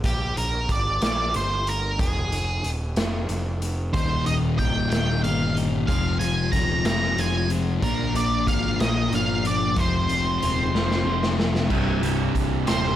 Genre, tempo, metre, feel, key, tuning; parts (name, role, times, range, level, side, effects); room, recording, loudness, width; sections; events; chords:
quiet-loud alternative rock; 62 BPM (dotted quarters); 6/8; straight; A4 = 440 Hz
fuzz picked electric bass; bass; 0.0-13.0 s; C1 to Bb1; -27 LUFS; equal; overdrive
raw garage drum kit; drums; 0.0-12.8 s; crash cymbal, hi-hat, kick drum, snare drum; -27 LUFS; equal
octave-fuzz lead guitar; melody; 0.1-13.0 s; G4 to Bb5; -26 LUFS; right 1 dB; distortion, digital delay
twelve-string electric guitar; arpeggios; 3.9-13.0 s; C2 to Bb4; -30 LUFS; right 3 dB
thick fuzz guitar; riff; 3.9-13.0 s; C2 to Bb3; -26 LUFS; left 6 dB; distortion
crunchy overdriven guitar; riff; 11.7-13.0 s; C2 to C3; -27 LUFS; right 14 dB
light reverb; -21 LUFS; side -12 dB against mid
0.0-11.7 A section; 11.7-13.0 B section
drum fill 10.7-11.7; lead electric guitar solo 11.7-13.0
0.0 Gm; 2.0 Fm; 3.9 Eb; 5.9 Fm; 7.8 Bb; 9.8 Fm; 11.7 Cm